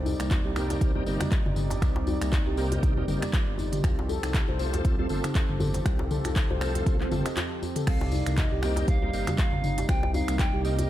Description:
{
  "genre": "afro house",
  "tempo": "119 BPM",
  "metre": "4/4",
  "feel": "swing 56% on 16ths",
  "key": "C dorian",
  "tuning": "A4 = 441 Hz",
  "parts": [
    { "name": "warm analog pad", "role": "sustained chords", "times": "0.0-10.9 s", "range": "C3 to D5", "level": "-36 LUFS", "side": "right 1 dB", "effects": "wide subtle chorus, sidechain pumping" },
    { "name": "dark detuned saw bass", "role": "bass", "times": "0.0-10.9 s", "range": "G1 to C2", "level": "-30 LUFS", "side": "equal", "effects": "sidechain pumping" },
    { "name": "handpan", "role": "arpeggios", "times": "0.1-10.7 s", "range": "G3 to Eb5", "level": "-33 LUFS", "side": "equal", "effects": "sidechain pumping, dub echo" },
    { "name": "djembe", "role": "percussion", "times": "0.1-10.9 s", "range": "none", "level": "-36 LUFS", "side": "left 1 dB", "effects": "none" },
    { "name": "tambourine", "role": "percussion", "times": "0.1-10.9 s", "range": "none", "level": "-46 LUFS", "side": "left 5 dB", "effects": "none" },
    { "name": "afro-pop drum kit", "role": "drums", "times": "0.2-10.9 s", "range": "crash cymbal, finger snaps, handclaps, hi-hat, toms", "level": "-33 LUFS", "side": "left 1 dB", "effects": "none" },
    { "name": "electronic kick drum", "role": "drums", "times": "0.3-10.5 s", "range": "none", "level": "-26 LUFS", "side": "equal", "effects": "none" },
    { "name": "bright tonewheel organ", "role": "stabs", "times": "0.6-10.9 s", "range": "A3 to A4", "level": "-36 LUFS", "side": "left 2 dB", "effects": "chorus vibrato, slow rotary speaker, sidechain pumping, dub echo" },
    { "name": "breathy polished pan flute", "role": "melody", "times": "7.9-10.9 s", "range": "Eb5 to G5", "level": "-34 LUFS", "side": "right 2 dB", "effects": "dub echo" }
  ],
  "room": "studio reverb",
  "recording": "none",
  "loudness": "-24 LUFS",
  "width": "side -13 dB against mid",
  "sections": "0.0-10.9 A section",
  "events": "break 7.4-7.9",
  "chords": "0.0 Cm7; 3.8 F; 7.9 Cm7"
}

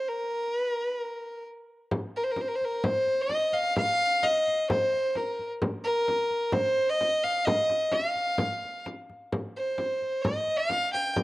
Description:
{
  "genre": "mongolian traditional, Mongolian folk",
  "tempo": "130 BPM",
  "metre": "4/4",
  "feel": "straight",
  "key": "Bb zhi mode",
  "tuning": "A4 = 442 Hz",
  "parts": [
    { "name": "rich fiddle", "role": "melody", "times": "0.0-11.2 s", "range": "Bb4 to G5", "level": "-26 LUFS", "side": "equal", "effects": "none" },
    { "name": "frame drum", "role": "percussion", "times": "1.9-11.2 s", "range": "none", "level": "-31 LUFS", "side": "left 1 dB", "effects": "none" }
  ],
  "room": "moderate spring reverb, RT60 1.7 s, small room ambience",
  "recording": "home recording on cassette",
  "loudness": "-25 LUFS",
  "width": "side -18 dB against mid",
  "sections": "0.0-1.9 A section; 1.9-11.2 B section",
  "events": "none",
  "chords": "none"
}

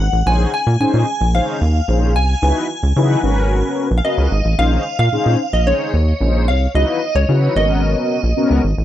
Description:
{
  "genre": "early-eighties boogie funk",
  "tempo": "111 BPM",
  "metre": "4/4",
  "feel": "straight",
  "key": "Bb phrygian",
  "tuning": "A4 = 440 Hz",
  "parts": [
    { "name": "shimmering bell with halo", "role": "melody", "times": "0.0-8.6 s", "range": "Db5 to Ab5", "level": "-20 LUFS", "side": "left 1 dB", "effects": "ensemble chorus, tremolo, tape echo" },
    { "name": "rubbery square bass", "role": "bass", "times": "0.0-8.8 s", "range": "Ab1 to Db3", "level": "-15 LUFS", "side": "equal", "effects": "none" },
    { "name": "mellow synth brass", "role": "accompaniment", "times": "0.3-8.6 s", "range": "Cb4 to C5", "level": "-20 LUFS", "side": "left 2 dB", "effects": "chorus" }
  ],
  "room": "little or no reverb",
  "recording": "dry, close 1970s-style studio recording",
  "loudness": "-14 LUFS",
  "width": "side -12 dB against mid",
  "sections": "0.0-8.8 A section",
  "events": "none",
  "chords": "0.3 Bbm11; 2.4 Dbm11; 3.2 Abm11; 4.6 Bbm11; 6.7 Dbm11; 7.6 Abm11"
}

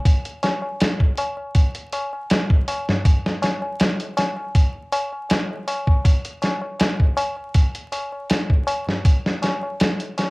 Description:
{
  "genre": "trip hop",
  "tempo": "80 BPM",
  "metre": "4/4",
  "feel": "straight",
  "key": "none",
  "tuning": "none",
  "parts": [
    { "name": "dusty soul sampler-style drum kit", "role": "drums", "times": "0.1-10.3 s", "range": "hi-hat, kick drum, snare drum", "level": "-18 LUFS", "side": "equal", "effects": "cassette tape" },
    { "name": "tabla", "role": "percussion", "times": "0.1-10.3 s", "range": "none", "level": "-27 LUFS", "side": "left 1 dB", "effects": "none" }
  ],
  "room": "light reverb",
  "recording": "home recording on cassette, vinyl crackle",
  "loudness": "-19 LUFS",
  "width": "side -25 dB against mid",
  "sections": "0.0-10.3 A section",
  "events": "none",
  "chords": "none"
}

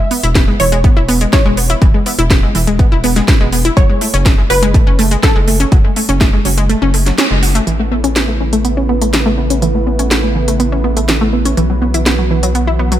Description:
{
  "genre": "progressive house",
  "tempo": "123 BPM",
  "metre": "4/4",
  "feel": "straight",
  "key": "unclear",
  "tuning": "A4 = 439 Hz",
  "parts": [
    { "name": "wide unison pluck", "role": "melody", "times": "0.0-7.6 s", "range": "A4 to E5", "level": "-19 LUFS", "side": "equal", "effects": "digital delay" },
    { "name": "analog pluck", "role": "arpeggios", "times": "0.0-13.0 s", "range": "E3 to F#4", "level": "-16 LUFS", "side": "equal", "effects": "chorus, sidechain pumping, digital delay" },
    { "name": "house drum kit", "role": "drums", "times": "0.1-13.0 s", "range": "hi-hat, snare drum", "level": "-17 LUFS", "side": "right 1 dB", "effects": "small room reverb" },
    { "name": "round analog bass", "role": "bass", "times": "0.2-13.0 s", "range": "E1 to B1", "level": "-16 LUFS", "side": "equal", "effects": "sidechain pumping" },
    { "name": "electronic kick drum", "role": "drums", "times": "0.4-6.3 s", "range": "none", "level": "-11 LUFS", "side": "equal", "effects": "small room reverb" },
    { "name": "warm analog pad", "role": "sustained chords", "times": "7.7-13.0 s", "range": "C#3 to B4", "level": "-20 LUFS", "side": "right 2 dB", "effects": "chorus, sidechain pumping" }
  ],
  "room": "light reverb, digital ambience",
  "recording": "faint mains hum",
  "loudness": "-10 LUFS",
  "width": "side -12 dB against mid",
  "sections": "0.0-7.7 A section; 7.7-13.0 B section",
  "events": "kick drops out 6.7-7.7; band accent 7.2; filter sweep on synth arpeggio sound 7.7-13.0",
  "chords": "0.0 E; 3.8 F#madd9; 7.7 Aadd9; 11.6 Bsus4"
}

